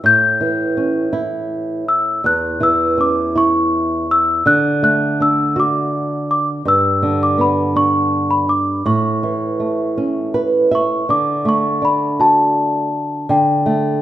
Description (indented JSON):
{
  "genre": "children's music, lullaby",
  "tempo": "54 BPM (dotted quarters)",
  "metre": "6/8",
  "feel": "rubato",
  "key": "D major",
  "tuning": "A4 = 439 Hz",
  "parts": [
    { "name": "celesta", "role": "melody", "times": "0.0-14.0 s", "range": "G5 to G6", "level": "-16 LUFS", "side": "left 1 dB", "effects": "none" },
    { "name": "flamenco guitar", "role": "accompaniment", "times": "0.0-14.0 s", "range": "E2 to E5", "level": "-18 LUFS", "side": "right 2 dB", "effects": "none" }
  ],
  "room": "moderate recital hall reverb, RT60 1.4 s",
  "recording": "minimal, uncompressed stereo recording",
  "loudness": "-14 LUFS",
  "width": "side -13 dB against mid",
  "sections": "0.0-11.1 A section; 11.1-14.0 A section",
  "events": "nylon-string guitar fill 10.0-11.1",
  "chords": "0.0 A; 4.5 D; 6.7 G; 8.8 A; 11.1 D; 13.3 Gsus2/D"
}